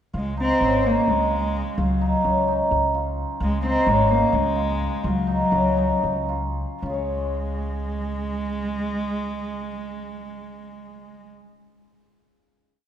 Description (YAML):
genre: contemporary instrumental, chamber music in an uneven meter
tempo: 225-261 BPM (eighths)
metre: 7/8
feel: straight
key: Db major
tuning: A4 = 440 Hz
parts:
  - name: cimbalom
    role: arpeggios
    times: 0.1-11.5 s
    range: Db4 to Db5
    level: -23 LUFS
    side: equal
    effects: none
  - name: upright bass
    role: bass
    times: 0.1-11.4 s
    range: Ab1 to Db2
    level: -27 LUFS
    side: equal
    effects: none
  - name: warm cello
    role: melody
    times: 0.2-11.3 s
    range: Gb3 to C4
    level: -26 LUFS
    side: equal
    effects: none
room: moderate concert hall reverb, RT60 1.9 s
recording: minimal, uncompressed stereo recording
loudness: -20 LUFS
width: side -10 dB against mid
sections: 0.1-6.8 A section; 6.8-10.5 final chord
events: slowing down 3.4-6.8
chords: 0.1 Dbmaj7; 1.8 Gb5/Db; 3.4 Db; 5.0 Gb5/Db; 6.8 Db